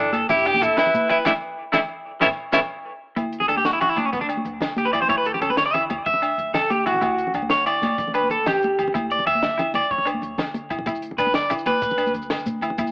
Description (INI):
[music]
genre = highlife guitar band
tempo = 125 BPM (dotted quarters)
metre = 12/8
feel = straight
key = D major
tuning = A4 = 440 Hz
[part]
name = clear tenor saxophone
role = melody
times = 0.0-2.6 s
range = D4 to G4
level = -19 LUFS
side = equal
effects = cassette tape
[part]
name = clean electric guitar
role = accompaniment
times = 0.0-12.9 s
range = A3 to E4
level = -30 LUFS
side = left 1 dB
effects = cassette tape
[part]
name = electric guitar at the edge of break-up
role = arpeggios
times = 0.0-12.1 s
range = B3 to E5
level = -21 LUFS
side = equal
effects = cassette tape, analog delay
[part]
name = upright bass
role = bass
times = 0.0-12.9 s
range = E1 to D3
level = -37 LUFS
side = equal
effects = none
[part]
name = compact cocktail drum kit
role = drums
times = 0.1-12.9 s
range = hi-hat, kick drum, snare drum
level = -29 LUFS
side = equal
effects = cassette tape
[part]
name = agogo bells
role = percussion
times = 0.1-12.9 s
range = none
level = -29 LUFS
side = equal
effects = none
[part]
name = congas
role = percussion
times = 0.1-12.9 s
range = none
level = -30 LUFS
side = left 1 dB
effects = none
[part]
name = shekere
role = percussion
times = 0.3-2.6, 10.9-12.9 s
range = none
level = -39 LUFS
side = equal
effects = none
[sound]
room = moderate spring reverb, RT60 1.4 s, small room ambience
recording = home recording on cassette, AM radio sound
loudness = -19 LUFS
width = side -30 dB against mid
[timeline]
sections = 0.0-3.2 A section; 3.2-12.9 B section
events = band accent 1.3-3.2; drum fill 2.7-3.2; clean electric guitar solo 3.2-12.9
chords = 0.3 Em; 1.3 Dsus2; 2.2 Aadd9; 3.2 Dsus2; 5.1 Bm11/D; 6.1 E5/D; 7.0 Dadd9; 9.0 Dsus2; 9.9 E5/D; 10.9 Dsus2